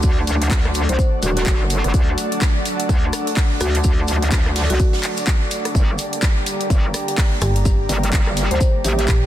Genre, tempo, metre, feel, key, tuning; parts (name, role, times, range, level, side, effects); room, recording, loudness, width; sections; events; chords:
bass house; 126 BPM; 4/4; swing 60% on 16ths; G harmonic minor; A4 = 440 Hz
bright symphonic string section; sustained chords; 0.0-9.3 s; D3 to G4; -28 LUFS; equal; sidechain pumping, low-pass filter
metallic wobble bass; bass; 0.0-9.1 s; Eb1 to D2; -20 LUFS; equal; chorus, overdrive, sidechain pumping
big rock drum kit; drums; 0.0-9.2 s; hi-hat, shaker, snare drum; -31 LUFS; equal; high-pass filter on hats, small room ambience, high-pass filter on snare, high-pass filter on perc, high-pass filter on room
electronic kick drum; drums; 0.0-9.2 s; -17 LUFS; equal; small room ambience
house drum kit; drums; 0.0-9.2 s; handclaps, hi-hat, rim click; -26 LUFS; equal; small room ambience, soft clipping on snare
airy breathy pad; texture; 0.0-9.3 s; D4 to Bb5; -27 LUFS; equal; chorus, sidechain pumping
marimba with medium hard mallets; melody; 0.9-9.0 s; F#4 to C5; -28 LUFS; equal; dub echo
metallic FM bass; bass; 7.4-9.3 s; G1 to Bb1; -19 LUFS; equal; tube saturation, sidechain pumping
small room reverb; dense, heavily limited modern master; -16 LUFS; side -12 dB against mid
0.0-9.3 A section
0.0 D; 5.8 Gm